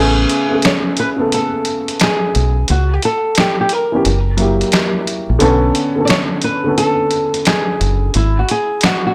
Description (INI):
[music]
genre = lo-fi hip hop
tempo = 88 BPM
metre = 4/4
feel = swing 64% on 16ths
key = A major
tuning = A4 = 441 Hz
[part]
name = dark upright piano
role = accompaniment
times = 0.0-8.2 s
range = C#3 to A4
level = -19 LUFS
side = equal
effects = cassette tape, low-pass filter, plate reverb
[part]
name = deep dub fingered electric bass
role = bass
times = 0.0-8.4 s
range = F#1 to C#2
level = -17 LUFS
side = equal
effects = transformer saturation
[part]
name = dusty soul sampler-style drum kit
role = drums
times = 0.3-9.0 s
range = finger snaps, hi-hat, snare drum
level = -20 LUFS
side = equal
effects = none
[part]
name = flamenco guitar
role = melody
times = 0.7-9.1 s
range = E4 to D5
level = -20 LUFS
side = equal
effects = low-pass filter, plate reverb, tape echo
[sound]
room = light reverb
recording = dry, gritty hardware recording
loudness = -15 LUFS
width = mono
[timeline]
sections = 0.0-9.1 A section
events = break 0.0-9.1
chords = 0.0 Amaj9; 2.7 C#m7b5; 4.0 F#7b9; 5.4 Bm9; 8.1 G#7(no3)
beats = 0.64 1.32 2.00 | 2.69 3.37 4.05 4.73 | 5.41 6.09 6.78 7.46 | 8.14 8.82